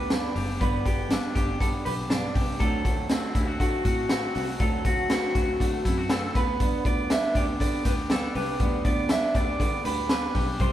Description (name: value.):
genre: jangly indie pop.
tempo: 120 BPM.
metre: 4/4.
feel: straight.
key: G major.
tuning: A4 = 440 Hz.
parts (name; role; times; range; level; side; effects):
electric guitar through a small old amp; melody; 0.0-10.7 s; D4 to E5; -30 LUFS; right 1 dB; none.
fingerpicked steel-string acoustic guitar; accompaniment; 0.0-10.7 s; G2 to F#4; -32 LUFS; right 3 dB; none.
electric guitar through a small old amp; arpeggios; 0.0-10.7 s; F#3 to G4; -34 LUFS; left 3 dB; none.
picked electric bass; bass; 0.0-10.7 s; F#1 to D3; -33 LUFS; equal; none.
raw garage drum kit; drums; 0.1-10.7 s; hi-hat, kick drum, snare drum; -26 LUFS; equal; none.
room: moderate stone room reverb, RT60 1.0 s.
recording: band playing live in one room.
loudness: -23 LUFS.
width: side -12 dB against mid.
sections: 0.0-10.7 A section.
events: none.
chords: 0.0 G; 2.6 D7; 6.4 G.